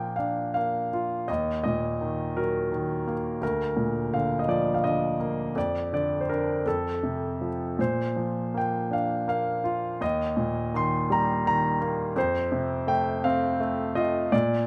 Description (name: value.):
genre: classical, lyrical solo piano.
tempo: 55 BPM (dotted quarters).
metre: 6/8.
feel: uneven beats, rubato.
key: Bb major.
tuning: A4 = 440 Hz.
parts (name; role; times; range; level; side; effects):
bright grand piano; solo; 0.0-14.7 s; D2 to C6; -27 LUFS; equal; none.
room: light reverb.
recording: close, detailed microphones.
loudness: -27 LUFS.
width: mono.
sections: 0.0-14.7 A section.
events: none.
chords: 0.0 Bb; 1.3 Ebm; 3.4 Bb/D; 5.6 Bbadd9/F; 6.7 F; 7.8 Bbadd9; 10.0 Eb; 12.2 F.